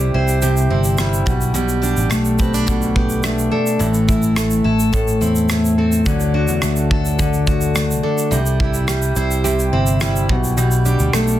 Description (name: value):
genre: acoustic pop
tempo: 106 BPM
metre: 4/4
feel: straight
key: G major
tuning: A4 = 440 Hz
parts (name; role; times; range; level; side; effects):
- picked steel-string acoustic guitar; accompaniment; 0.0-11.4 s; A2 to C5; -18 LUFS; left 2 dB; none
- nylon-string guitar; arpeggios; 0.0-11.4 s; E3 to A4; -23 LUFS; right 5 dB; ping-pong delay
- sustaining fretless electric bass; bass; 0.0-11.4 s; G1 to E2; -20 LUFS; equal; none
- modern studio drum kit; drums; 0.3-11.4 s; kick drum, rim click, shaker; -22 LUFS; right 1 dB; soft clipping on snare
room: wet studio reverb, RT60 0.5 s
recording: dense, heavily limited modern master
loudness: -15 LUFS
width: side -13 dB against mid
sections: 0.0-11.4 A section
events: none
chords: 0.0 C; 1.3 Gadd9; 3.8 Am; 6.1 D; 8.3 C; 10.3 Gadd9/B